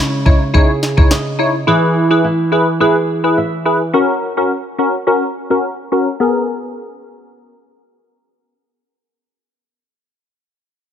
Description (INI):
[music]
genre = dancehall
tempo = 106 BPM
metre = 4/4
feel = straight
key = G# minor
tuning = A4 = 440 Hz
[part]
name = flamenco guitar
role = arpeggios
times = 0.0-4.0 s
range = C#3 to E5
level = -17 LUFS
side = right 2 dB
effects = low-pass filter
[part]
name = wavetable chord stab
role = accompaniment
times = 0.3-9.9 s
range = B3 to C#5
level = -15 LUFS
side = left 1 dB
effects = sidechain pumping, low-pass filter
[part]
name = afro-pop drum kit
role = drums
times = 0.3-1.2 s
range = kick drum, snare drum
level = -12 LUFS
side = equal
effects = none
[sound]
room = light reverb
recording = none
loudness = -12 LUFS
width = side -9 dB against mid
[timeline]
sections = 0.0-6.2 A section; 6.2-8.5 B section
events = filter sweep 0.0-6.2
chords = 0.0 C#madd9; 1.7 E; 3.9 F#; 6.2 G#madd9